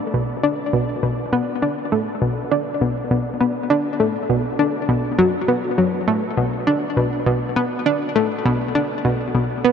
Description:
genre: ambient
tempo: 101 BPM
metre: 4/4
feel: straight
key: B minor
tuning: A4 = 440 Hz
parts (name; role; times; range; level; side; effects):
- analog pluck; solo; 0.1-9.7 s; B2 to D4; -18 LUFS; equal; chorus, ping-pong delay
room: wet huge ambient reverb, RT60 9.1 s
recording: in a vast, echoing space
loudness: -18 LUFS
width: side -7 dB against mid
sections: 0.0-9.7 A section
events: none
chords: none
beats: 0.14 0.73 | 1.32 1.92 2.51 3.11 | 3.70 4.29 4.89 5.48 | 6.08 6.67 7.27 7.86 | 8.45 9.05 9.64

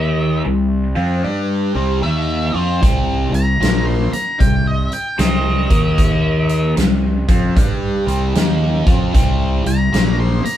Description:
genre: blues rock power trio and southern rock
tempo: 76 BPM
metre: 4/4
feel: swing 65% on 8ths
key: unclear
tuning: A4 = 445 Hz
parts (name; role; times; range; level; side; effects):
- octave-fuzz lead guitar; melody; 0.0-10.6 s; C5 to C6; -23 LUFS; equal; distortion
- cranked stack guitar; riff; 0.0-10.5 s; Bb2 to G4; -20 LUFS; left 1 dB; overdrive, phaser
- fuzz fingered electric bass; bass; 0.0-10.5 s; Bb1 to G2; -18 LUFS; equal; overdrive
- huge arena drum kit; drums; 2.8-10.6 s; hi-hat, kick drum, snare drum; -17 LUFS; equal; none
room: moderate studio reverb, RT60 0.6 s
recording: band playing live in one room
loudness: -14 LUFS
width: side -11 dB against mid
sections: 0.0-10.6 A section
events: none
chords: 0.5 C5; 5.6 Eb5; 6.8 C5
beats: 0.46 1.24 2.03 | 2.82 3.61 4.40 5.19 | 5.98 6.77 7.56 8.35 | 9.14 9.93

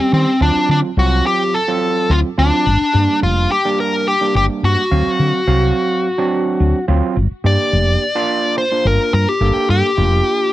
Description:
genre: straight-eighth soul blues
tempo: 107 BPM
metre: 4/4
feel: straight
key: G minor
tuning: A4 = 440 Hz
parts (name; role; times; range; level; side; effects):
- dark smooth lead guitar; melody; 0.0-10.5 s; C4 to D5; -16 LUFS; left 1 dB; overdrive
- overdriven tine electric piano; accompaniment; 0.0-10.5 s; F#3 to E#5; -21 LUFS; right 5 dB; wide subtle chorus
- woody fretless electric bass; bass; 0.1-10.2 s; F1 to Eb3; -15 LUFS; left 1 dB; lush chorus
room: light reverb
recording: none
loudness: -13 LUFS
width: side -15 dB against mid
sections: 0.0-7.2 A section; 7.2-10.5 B section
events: lead electric guitar solo 7.2-10.5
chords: 0.4 D7#9; 2.7 Gm; 4.9 D7#9; 7.2 Gm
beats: | 0.41 0.98 1.54 2.10 | 2.67 3.23 3.79 4.35 | 4.91 5.48 6.04 6.60 | 7.16 7.72 8.29 8.85 | 9.41 9.97

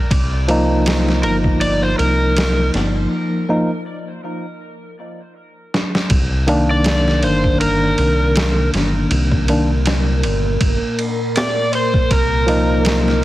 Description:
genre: trip hop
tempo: 80 BPM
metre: 4/4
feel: swing 56% on 16ths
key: C minor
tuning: A4 = 437 Hz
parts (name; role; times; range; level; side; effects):
- round analog bass; bass; 0.1-13.2 s; G1 to C2; -18 LUFS; equal; tube saturation
- trip hop sampler-style drum kit; drums; 0.1-13.2 s; kick drum, ride cymbal, snare drum; -20 LUFS; equal; none
- bright tine electric piano; accompaniment; 0.5-13.2 s; Eb3 to Eb4; -19 LUFS; equal; harmonic tremolo, vintage 12-bit sampler grit, tape echo
- overdriven slide guitar; melody; 1.2-13.2 s; Bb4 to D5; -22 LUFS; equal; tape echo
- deep dark ambient pad; sustained chords; 8.8-13.2 s; Bb3 to Bb4; -24 LUFS; equal; chorus, built-in reverb
room: light reverb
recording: heavily compressed radio sound, multiband compression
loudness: -14 LUFS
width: side -16 dB against mid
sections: 0.0-6.1 A section; 6.1-13.2 B section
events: break 3.1-6.1; drum fill 5.7-6.1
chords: 0.1 Ebsus2; 6.1 Cm9; 12.1 Ebsus2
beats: | 0.11 0.86 1.61 2.36 | 3.11 3.86 4.61 5.36 | 6.11 6.86 7.61 8.36 | 9.11 9.86 10.61 11.36 | 12.11 12.86

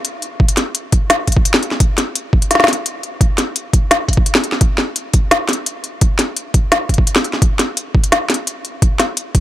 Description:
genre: drum and bass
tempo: 171 BPM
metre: 4/4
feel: half-time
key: none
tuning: none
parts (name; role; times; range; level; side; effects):
- organic electronic drum kit; drums; 0.0-9.4 s; hi-hat, snare drum; -16 LUFS; left 1 dB; none
- electronic kick drum; drums; 0.4-9.4 s; none; -13 LUFS; equal; overdrive
room: little or no reverb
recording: none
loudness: -13 LUFS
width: side -13 dB against mid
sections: 0.0-9.4 A section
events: none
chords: none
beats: 0.05 | 0.40 0.75 1.10 1.45 | 1.80 2.15 2.51 2.86 | 3.21 3.56 3.91 4.26 | 4.61 4.96 5.31 5.66 | 6.01 6.37 6.72 7.07 | 7.42 7.77 8.12 8.47 | 8.82 9.17

